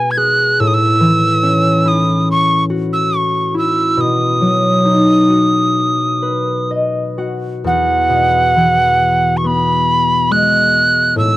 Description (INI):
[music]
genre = celtic folk, Celtic slow air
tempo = 61-72 BPM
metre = 4/4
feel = rubato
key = E major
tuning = A4 = 439 Hz
[part]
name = wooden whistle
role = melody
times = 0.0-11.4 s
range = F#5 to G#6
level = -13 LUFS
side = right 1 dB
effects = none
[part]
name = concert harp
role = accompaniment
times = 0.0-11.4 s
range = E2 to F#5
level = -15 LUFS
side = left 1 dB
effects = none
[sound]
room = little or no reverb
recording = dry, close 1970s-style studio recording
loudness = -11 LUFS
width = side -16 dB against mid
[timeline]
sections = 0.0-7.6 A section; 7.6-11.4 B section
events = harp fill 6.2-7.6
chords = 0.0 Amaj7sus2/B (rootless); 0.6 A6; 4.0 B; 7.6 Eadd9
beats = | 0.59 1.43 2.27 3.12 | 3.98 4.85 5.74 6.69 | 7.63 8.54 9.43 10.31 | 11.17